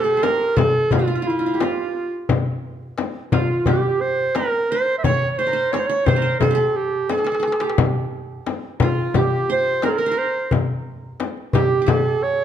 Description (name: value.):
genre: Turkish makam ensemble.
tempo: 88 BPM.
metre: 4/4.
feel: straight.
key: C makam hicaz.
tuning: A4 = 439 Hz.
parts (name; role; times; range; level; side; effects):
warm clarinet; melody; 0.0-12.4 s; E4-23c to E5; -20 LUFS; right 2 dB; none.
qanun; second line; 0.0-12.4 s; F4 to Db5; -26 LUFS; right 3 dB; none.
darbuka; percussion; 0.2-12.0 s; none; -23 LUFS; left 2 dB; none.
frame drum; percussion; 0.2-12.0 s; none; -24 LUFS; left 6 dB; none.
room: moderate recital hall reverb, RT60 1.3 s.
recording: dark, warm production.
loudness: -18 LUFS.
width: side -9 dB against mid.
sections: 0.0-12.4 A section.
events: drum fill 7.1-7.8.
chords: none.